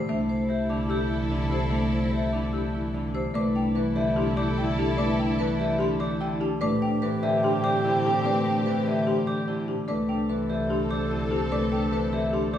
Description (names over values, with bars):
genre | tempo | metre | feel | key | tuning
classical, minimalist pattern music | 147 BPM | 4/4 | straight | C major | A4 = 438 Hz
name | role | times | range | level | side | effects
folk marimba with medium hard mallets | melody | 0.0-12.6 s | G4 to E5 | -33 LUFS | left 6 dB | none
Celtic harp | accompaniment | 0.0-12.6 s | D3 to A3 | -27 LUFS | left 1 dB | none
vibraphone with medium mallets | arpeggios | 0.0-12.6 s | D4 to C5 | -33 LUFS | right 3 dB | none
xylophone with soft rubber mallets | arpeggios | 0.0-12.6 s | E5 to E6 | -33 LUFS | left 2 dB | none
alto flute | second line | 0.1-12.6 s | E4 to A4 | -32 LUFS | right 1 dB | none
rich symphonic string section | sustained chords | 0.1-12.6 s | C4 to A4 | -35 LUFS | left 2 dB | none
warm double bass | bass | 0.1-12.6 s | C2 to A2 | -31 LUFS | right 2 dB | none
room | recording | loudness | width
wet recital hall reverb, RT60 1.5 s | heard from further back in the room, small room ambience | -23 LUFS | side -10 dB against mid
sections
0.0-3.4 A section; 3.4-12.6 B section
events
none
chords
0.1 C6; 3.4 C69; 6.6 Am9; 9.9 C69